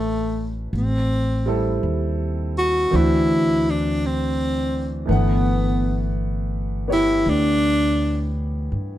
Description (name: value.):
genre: jazz ballad.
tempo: 55 BPM.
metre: 4/4.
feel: swing 67% on 8ths.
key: D major.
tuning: A4 = 440 Hz.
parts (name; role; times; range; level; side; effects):
warm tenor saxophone; melody; 0.0-8.4 s; A3 to F#4; -21 LUFS; equal; plate reverb.
clear upright piano; accompaniment; 0.0-9.0 s; D3 to F#5; -25 LUFS; right 1 dB; none.
upright bass; bass; 0.0-9.0 s; G1 to G2; -23 LUFS; equal; none.
room: light reverb.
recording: dark, warm production.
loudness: -19 LUFS.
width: side -13 dB against mid.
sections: 0.0-9.0 A section.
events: none.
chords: 0.0 Dmaj9; 0.7 Am7; 2.9 D9; 5.1 Gmaj13.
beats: | 0.73 1.81 2.90 3.99 | 5.07 6.16 7.25 8.34.